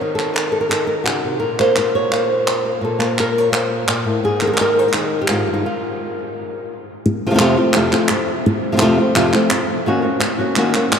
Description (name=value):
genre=flamenco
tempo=171 BPM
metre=4/4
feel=straight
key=F phrygian dominant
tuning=A4 = 439 Hz
part: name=flamenco guitar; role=melody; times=0.0-11.0 s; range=F2 to Db5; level=-16 LUFS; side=equal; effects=tape echo
part: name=palmas hand claps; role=percussion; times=0.2-11.0 s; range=none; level=-21 LUFS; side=right 1 dB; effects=none
room=wet cathedral reverb, RT60 5.7 s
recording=in a vast, echoing space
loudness=-15 LUFS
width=side -7 dB against mid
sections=0.0-7.1 A section; 7.1-11.0 B section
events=stop 5.6-7.1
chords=0.0 Ebm; 1.4 Bbsus2; 4.2 Ab5; 5.6 N.C.; 7.1 F; 9.9 Ebm7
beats=| 0.02 0.37 0.72 1.07 | 1.42 1.77 2.13 2.48 | 2.83 3.18 3.53 3.88 | 4.24 4.59 4.94 5.29 | 5.64 6.00 6.35 6.70 | 7.05 7.40 7.75 8.11 | 8.46 8.81 9.16 9.51 | 9.86 10.21 10.56 10.91